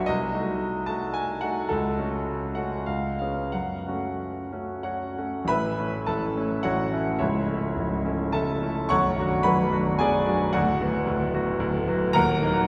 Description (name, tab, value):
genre	classical, romantic character piece for solo piano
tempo	89-115 BPM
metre	3/4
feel	rubato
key	F# minor, A major from 5.5 s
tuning	A4 = 440 Hz
part	clear concert grand piano	solo	0.0-12.7 s	B0 to C#6	-26 LUFS	equal	none
room	wet church reverb, RT60 3.7 s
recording	none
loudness	-26 LUFS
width	mono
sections	0.0-5.5 A section; 5.5-12.7 B section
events	none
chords	0.1 Cdim7; 1.7 F#m/C#; 2.9 C#7; 3.5 F#m; 5.5 A; 7.2 A/C#; 8.9 Bm; 10.5 Bm/D; 12.2 D#m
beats	| 0.08 0.61 1.15 | 1.70 2.26 2.87 | 3.53 4.19 4.84 | 5.48 6.07 6.64 | 7.20 7.77 8.35 | 8.91 9.46 10.00 | 10.54 11.07 11.60 | 12.15